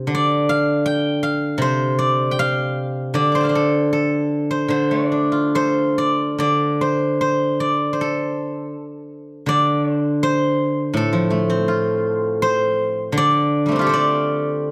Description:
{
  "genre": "chinese traditional, Chinese solo plucked strings",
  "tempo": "67-85 BPM",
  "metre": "4/4",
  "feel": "rubato",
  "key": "D yu mode",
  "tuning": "A4 = 440 Hz",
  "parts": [
    { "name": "steel-string zither", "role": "solo", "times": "0.0-14.7 s", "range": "A2 to D6", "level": "-20 LUFS", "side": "equal", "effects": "none" }
  ],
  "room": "moderate recital hall reverb, RT60 1.3 s",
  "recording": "none",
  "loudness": "-19 LUFS",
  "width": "mono",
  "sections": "0.0-6.4 A section; 6.4-14.7 B section",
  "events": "none",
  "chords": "none"
}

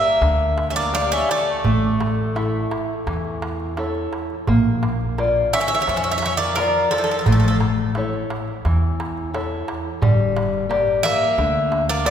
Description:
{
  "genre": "greek folk, Greek bouzouki band",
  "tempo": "86 BPM",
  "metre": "4/4",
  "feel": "straight",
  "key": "unclear",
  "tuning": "A4 = 440 Hz",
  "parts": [
    { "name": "Greek bouzouki", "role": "melody", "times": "0.0-12.1 s", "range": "A4 to E5", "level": "-21 LUFS", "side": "right 1 dB", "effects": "none" },
    { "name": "Greek bouzouki", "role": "second line", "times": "0.0-12.1 s", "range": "F3 to C#4", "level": "-27 LUFS", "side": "left 2 dB", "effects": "none" },
    { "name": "fingerpicked steel-string acoustic guitar", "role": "accompaniment", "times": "0.0-12.1 s", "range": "D3 to E5", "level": "-23 LUFS", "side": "left 2 dB", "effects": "none" },
    { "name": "darbuka", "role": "percussion", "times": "0.0-12.1 s", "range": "none", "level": "-25 LUFS", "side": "right 1 dB", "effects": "none" },
    { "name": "upright bass", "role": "bass", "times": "0.2-12.1 s", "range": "G1 to F2", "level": "-25 LUFS", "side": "equal", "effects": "none" }
  ],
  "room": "wet concert hall reverb, RT60 2.3 s",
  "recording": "recorded in a church or concert hall",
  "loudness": "-18 LUFS",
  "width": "side -9 dB against mid",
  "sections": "0.0-4.5 A section; 4.5-12.1 A section",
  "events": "speeding up 0.0-12.1",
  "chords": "0.0 Gm; 1.6 A; 4.5 Bb; 7.3 A; 10.0 Gm"
}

